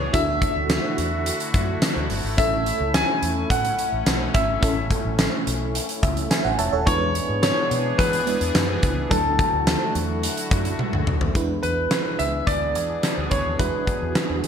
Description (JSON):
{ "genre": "1980s-style pop", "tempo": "107 BPM", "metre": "4/4", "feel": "straight", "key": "unclear", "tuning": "A4 = 442 Hz", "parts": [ { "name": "warm concert grand piano", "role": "melody", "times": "0.0-14.5 s", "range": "A4 to G#5", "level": "-25 LUFS", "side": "left 1 dB", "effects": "wide subtle chorus, ping-pong delay" }, { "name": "FM electric piano with tremolo", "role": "accompaniment", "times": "0.0-14.5 s", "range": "F#3 to A5", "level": "-28 LUFS", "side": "right 3 dB", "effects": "phaser" }, { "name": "sweeping resonant pad", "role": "sustained chords", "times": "0.0-14.5 s", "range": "D3 to G#4", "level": "-31 LUFS", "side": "left 2 dB", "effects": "chorus" }, { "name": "vintage muted fingered electric bass", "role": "bass", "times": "0.0-14.5 s", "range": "D#1 to E3", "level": "-28 LUFS", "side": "equal", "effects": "none" }, { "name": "huge arena drum kit", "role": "drums", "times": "0.1-14.5 s", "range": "hi-hat, kick drum, snare drum, tambourine, toms", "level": "-24 LUFS", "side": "equal", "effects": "gated reverb" } ], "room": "light reverb, studio reverb", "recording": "bright 1980s-style digital production", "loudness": "-20 LUFS", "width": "side -7 dB against mid", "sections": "0.0-11.4 A section; 11.4-14.5 B section", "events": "FM electric piano fill 5.7-6.9; drum fill 10.8-11.4", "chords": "0.1 Dadd9; 2.4 A; 6.9 E7; 9.1 Dadd9; 11.4 E7" }